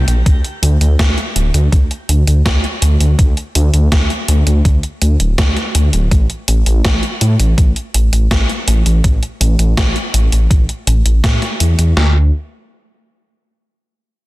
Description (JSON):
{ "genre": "synthwave", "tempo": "82 BPM", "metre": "4/4", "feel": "straight", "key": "unclear", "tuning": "A4 = 439 Hz", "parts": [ { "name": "dark detuned saw bass", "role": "bass", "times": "0.0-12.3 s", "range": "D1 to A2", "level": "-12 LUFS", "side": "equal", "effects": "sidechain pumping" }, { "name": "gated 80s digital drum machine", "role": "drums", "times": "0.1-11.9 s", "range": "hi-hat, snare drum", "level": "-19 LUFS", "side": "equal", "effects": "gated reverb, gated reverb snare" }, { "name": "gated 80s digital drum machine", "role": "drums", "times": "0.3-12.1 s", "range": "kick drum, snare drum", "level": "-13 LUFS", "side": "equal", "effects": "gated reverb, gated reverb snare" } ], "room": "little or no reverb", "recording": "dense, heavily limited modern master", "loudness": "-11 LUFS", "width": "side -19 dB against mid", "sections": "0.0-12.0 A section; 12.0-14.3 B section", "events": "none", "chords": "none" }